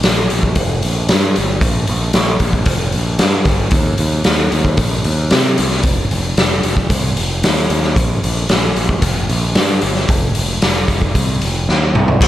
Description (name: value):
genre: rock, shoegaze and dream pop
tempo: 113 BPM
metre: 4/4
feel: straight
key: unclear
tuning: A4 = 438 Hz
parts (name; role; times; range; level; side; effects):
- growling fingered electric bass; bass; 0.0-12.3 s; F1 to C3; -17 LUFS; equal; overdrive
- raw garage drum kit; drums; 0.0-12.3 s; crash cymbal, hi-hat, kick drum, snare drum, toms; -14 LUFS; equal; none
room: little or no reverb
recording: none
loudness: -13 LUFS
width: side -13 dB against mid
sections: 0.0-12.2 A section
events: drum fill 11.7-12.2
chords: none